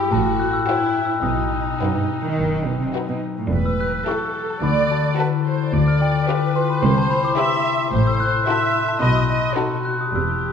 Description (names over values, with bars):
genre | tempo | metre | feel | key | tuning
cinematic, playful, whimsical film cue | 108 BPM | 4/4 | straight | unclear | A4 = 445 Hz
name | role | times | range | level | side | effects
glockenspiel with rubber mallets | melody | 0.0-10.5 s | G5 to F#6 | -23 LUFS | left 3 dB | none
warm studio viola section | accompaniment | 0.0-10.5 s | D#4 to E5 | -24 LUFS | right 2 dB | none
concert harp | arpeggios | 0.0-10.5 s | G2 to G4 | -24 LUFS | left 7 dB | none
rich studio cello section | bass | 0.1-10.5 s | C2 to D#3 | -25 LUFS | right 4 dB | none
rich studio double bass section | bass | 0.1-10.5 s | E1 to D2 | -26 LUFS | right 3 dB | none
rich studio violin section | melody | 0.7-10.0 s | A4 to C5 | -32 LUFS | left 2 dB | none
rich studio violin section | second line | 0.7-10.0 s | D#4 to G4 | -30 LUFS | left 3 dB | none
room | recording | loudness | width
wet scoring stage reverb, RT60 2.0 s | none | -18 LUFS | side -7 dB against mid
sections
0.0-10.5 A section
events
none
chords
0.1 F#m7b5/A; 1.2 B; 3.5 A5/E; 4.6 D; 5.7 G7/D; 6.8 Cmaj7; 7.9 F#m7b5/A; 9.0 B7